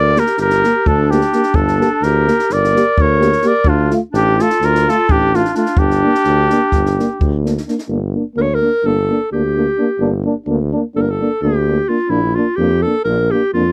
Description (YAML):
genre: balkan folk, Balkan brass band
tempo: 256 BPM (eighths)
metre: 9/8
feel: straight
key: G minor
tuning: A4 = 440 Hz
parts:
  - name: mellow trumpet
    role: melody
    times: 0.0-7.5 s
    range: F4 to D5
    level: -18 LUFS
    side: equal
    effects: none
  - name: clear clarinet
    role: second line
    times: 0.0-13.7 s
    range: D4 to C#5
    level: -21 LUFS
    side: equal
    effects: none
  - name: mellow tuba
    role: bass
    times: 0.0-13.7 s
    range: G1 to F2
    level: -20 LUFS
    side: equal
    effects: none
  - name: mellow euphonium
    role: accompaniment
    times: 0.2-13.6 s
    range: A3 to Bb3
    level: -23 LUFS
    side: equal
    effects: none
  - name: warm euphonium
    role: accompaniment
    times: 0.2-13.6 s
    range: D4 to G4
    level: -25 LUFS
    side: equal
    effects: none
  - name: compact cocktail drum kit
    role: percussion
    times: 0.2-7.8 s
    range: kick drum, snare drum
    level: -22 LUFS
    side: equal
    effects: none
room: light reverb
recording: dry, close 1970s-style studio recording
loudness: -15 LUFS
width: mono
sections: 0.0-7.9 A section; 7.9-13.7 B section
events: clarinet solo 7.9-13.7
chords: 0.0 Gm; 3.6 Dm; 5.8 Gm; 12.1 Bb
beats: 0.12 0.36 0.59 0.83 1.06 1.30 | 1.54 1.77 2.01 2.24 2.48 2.71 2.94 3.18 3.42 | 3.65 3.88 4.12 4.36 4.59 4.82 5.06 5.29 5.53 | 5.76 6.00 6.23 6.47 6.70 6.94 7.17 7.41 7.64 | 7.88 8.11 8.35 8.58 8.82 9.05 9.29 9.52 9.76 | 9.99 10.23 10.46 10.70 10.93 11.17 11.40 11.63 11.87 | 12.11 12.34 12.57 12.81 13.04 13.28 13.51